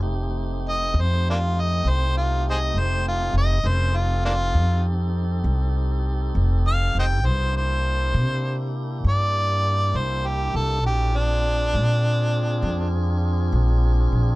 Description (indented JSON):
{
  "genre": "slow blues",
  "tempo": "67 BPM (dotted quarters)",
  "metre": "12/8",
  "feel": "straight",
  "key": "F mixolydian",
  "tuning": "A4 = 440 Hz",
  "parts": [
    { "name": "tonewheel organ", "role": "sustained chords", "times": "0.0-14.4 s", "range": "A3 to Bb4", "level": "-31 LUFS", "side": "right 1 dB", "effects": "overdrive, wide subtle chorus" },
    { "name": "upright bass", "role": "bass", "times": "0.0-14.4 s", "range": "F1 to C3", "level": "-21 LUFS", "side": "equal", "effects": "none" },
    { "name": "warm harmonica", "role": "melody", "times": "0.7-12.9 s", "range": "Bb3 to G5", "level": "-24 LUFS", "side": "equal", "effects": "overdrive" }
  ],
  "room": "little or no reverb",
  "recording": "dark, warm production",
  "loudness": "-20 LUFS",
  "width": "side -20 dB against mid",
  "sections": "0.0-14.4 A section",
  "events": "none",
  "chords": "0.0 F9; 7.2 C9; 10.8 Bb9"
}